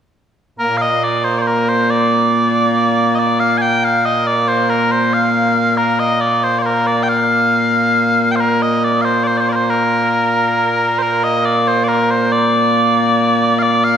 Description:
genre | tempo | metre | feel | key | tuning
scottish traditional, Scottish pipe music | 92 BPM (dotted quarters) | 6/8 | straight | Bb major | A4 = 441 Hz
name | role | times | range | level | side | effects
mellow small bagpipes | solo | 0.6-14.0 s | Bb2 to Ab5 | -12 LUFS | equal | none
room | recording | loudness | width
wet concert hall reverb, RT60 1.7 s | recorded in a church or concert hall | -12 LUFS | side -8 dB against mid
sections
0.6-11.0 A section; 11.0-14.0 A section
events
none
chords
none

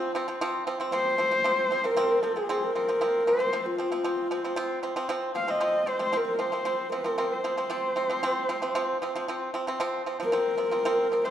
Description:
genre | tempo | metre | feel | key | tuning
mongolian traditional, Mongolian folk | 115 BPM | 4/4 | straight | unclear | A4 = 440 Hz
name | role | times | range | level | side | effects
dark horsehead fiddle | melody | 0.0-11.3 s | F4 to F5 | -26 LUFS | left 1 dB | none
pipa | arpeggios | 0.0-11.3 s | F3 to C4 | -29 LUFS | right 2 dB | none
room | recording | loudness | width
wet recital hall reverb, RT60 1.4 s | dark, warm production | -25 LUFS | side -10 dB against mid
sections
0.0-11.3 A section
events
none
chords
0.0 F5

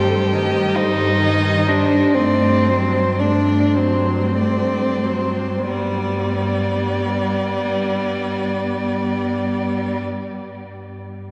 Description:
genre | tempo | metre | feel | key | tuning
classical, slow romantic movement for string quartet | 28-46 BPM (dotted quarters) | 6/8 | rubato | G major | A4 = 439 Hz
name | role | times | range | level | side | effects
rich violin | melody | 0.0-10.0 s | C5 to Eb5 | -30 LUFS | equal | none
warm violin | second line | 0.0-10.0 s | G3 to G4 | -22 LUFS | equal | none
warm viola | accompaniment | 0.0-10.0 s | Eb3 to B3 | -26 LUFS | equal | none
rich cello | bass | 0.0-10.0 s | G2 | -26 LUFS | equal | none
room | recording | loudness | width
wet cathedral reverb, RT60 6.3 s | none | -19 LUFS | mono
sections
0.0-5.7 A section; 5.7-9.3 B section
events
slowing down 0.0-5.7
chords
0.0 Cm/G; 2.2 D7/G; 5.7 G

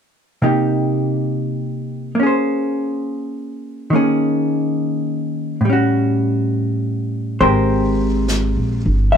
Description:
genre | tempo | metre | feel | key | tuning
jazz ballad | 69 BPM | 4/4 | swing 66% on 8ths | Ab major | A4 = 442 Hz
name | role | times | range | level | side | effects
hollow-body jazz guitar | accompaniment | 0.4-9.2 s | A2 to Fb5 | -17 LUFS | equal | none
upright bass | bass | 7.4-9.2 s | G1 to Bb1 | -18 LUFS | equal | none
jazz brush drum kit | drums | 7.4-9.2 s | brushed snare drum, hi-hat, snare drum | -29 LUFS | left 1 dB | none
room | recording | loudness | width
light reverb | none | -16 LUFS | side -7 dB against mid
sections
0.4-7.4 A section; 7.4-9.2 B section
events
none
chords
0.4 Cm7; 2.2 Bbm9; 3.9 Eb7sus4; 5.7 A6; 7.4 Abmaj9

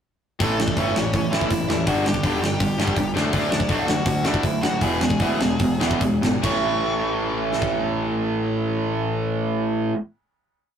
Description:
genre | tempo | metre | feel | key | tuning
punk rock | 139-165 BPM | 4/4 | straight | A mixolydian | A4 = 444 Hz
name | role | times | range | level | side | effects
nasal lead guitar with a parked wah | melody | 0.4-9.9 s | A3 to C#6 | -29 LUFS | left 1 dB | overdrive, digital delay
cranked stack guitar | riff | 0.4-10.0 s | G2 to E4 | -26 LUFS | left 4 dB | overdrive
distorted electric guitar | riff | 0.4-10.0 s | E2 to D4 | -24 LUFS | right 4 dB | distortion
overdriven picked electric bass | bass | 0.4-9.9 s | E1 to A2 | -30 LUFS | equal | none
tight metal drum kit | drums | 0.4-7.7 s | crash cymbal, hi-hat, kick drum, snare drum | -24 LUFS | left 1 dB | none
room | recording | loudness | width
light reverb | rough rehearsal-room recording, tube saturation | -20 LUFS | side -8 dB against mid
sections
0.4-6.4 verse; 6.4-9.9 final chord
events
slowing down 3.3-6.4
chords
0.4 A; 1.9 G5; 3.2 D; 4.8 E; 6.4 A

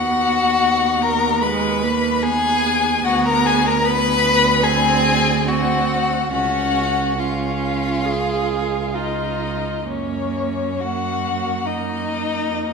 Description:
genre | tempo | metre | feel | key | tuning
classical, slow romantic movement for string quartet | 62-76 BPM | 4/4 | rubato | F# major | A4 = 440 Hz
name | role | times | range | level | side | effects
rich violin | melody | 0.0-12.7 s | C#5 to B5 | -21 LUFS | left 6 dB | none
rich violin | second line | 0.0-12.7 s | C#4 to B4 | -22 LUFS | left 1 dB | none
rich viola | accompaniment | 0.0-12.7 s | G#3 to G#4 | -24 LUFS | right 4 dB | none
rich cello | bass | 0.0-12.7 s | C#2 to F#2 | -24 LUFS | right 5 dB | none
room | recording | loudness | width
wet concert hall reverb, RT60 2.3 s | minimal, uncompressed stereo recording | -17 LUFS | side -5 dB against mid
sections
0.0-12.7 A section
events
none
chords
0.0 B/D#; 3.0 Bm/D; 4.6 D7; 6.3 C#; 9.9 F#

